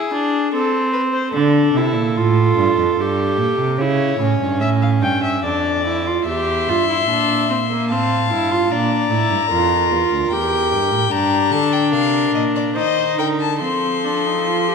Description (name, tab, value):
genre	classical, baroque-style fugue for string quartet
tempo	74 BPM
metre	3/4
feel	straight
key	D minor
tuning	A4 = 440 Hz
part	dark violin	second line	0.0-14.7 s	G4 to G5	-23 LUFS	left 4 dB	none
part	warm viola	accompaniment	0.0-14.7 s	Bb3 to G4	-19 LUFS	right 1 dB	none
part	dark cello	bass	1.3-14.7 s	D2 to F3	-21 LUFS	right 4 dB	none
part	rich violin	melody	6.3-14.7 s	D5 to C6	-21 LUFS	left 9 dB	none
room	wet scoring stage reverb, RT60 1.8 s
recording	none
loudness	-15 LUFS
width	side -5 dB against mid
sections	0.0-6.3 A section; 6.3-14.7 B section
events	none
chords	0.0 E7; 0.5 Am/C; 1.3 Dm; 3.0 Gmadd9; 3.8 A7; 5.4 Dm/F; 6.3 C/E; 7.9 F/A; 8.7 Bb; 10.3 Edim; 11.1 Gm; 12.8 Cm/Eb; 13.6 F